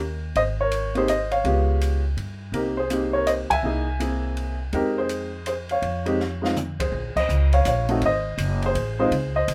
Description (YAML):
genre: jazz piano trio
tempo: 164 BPM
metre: 3/4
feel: swing 64% on 8ths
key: F minor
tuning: A4 = 440 Hz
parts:
  - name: warm baby grand piano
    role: melody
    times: 0.0-9.5 s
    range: Ab3 to Ab5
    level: -26 LUFS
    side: equal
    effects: none
  - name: upright bass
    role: bass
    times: 0.0-9.5 s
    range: Gb1 to G2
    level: -28 LUFS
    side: equal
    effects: none
  - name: open jazz drum kit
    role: drums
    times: 0.4-9.5 s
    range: crash cymbal, hi-hat, kick drum, ride cymbal, snare drum, toms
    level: -36 LUFS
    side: equal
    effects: none
room: light reverb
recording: none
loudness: -24 LUFS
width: mono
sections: 0.0-6.9 A section; 6.9-9.5 B section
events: band accent 3.5, 6.7, 7.1; drum fill 6.2-6.9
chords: 0.4 Abadd9; 1.5 Db7#11; 2.5 Cm7; 4.7 Fm9; 6.9 Bbmadd9; 8.0 Ab7b9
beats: | 0.36 0.72 1.09 | 1.45 1.82 2.18 | 2.55 2.91 3.28 | 3.64 4.01 4.37 | 4.74 5.10 5.47 | 5.83 6.20 6.57 | 6.93 7.29 7.66 | 8.03 8.39 8.76 | 9.12 9.49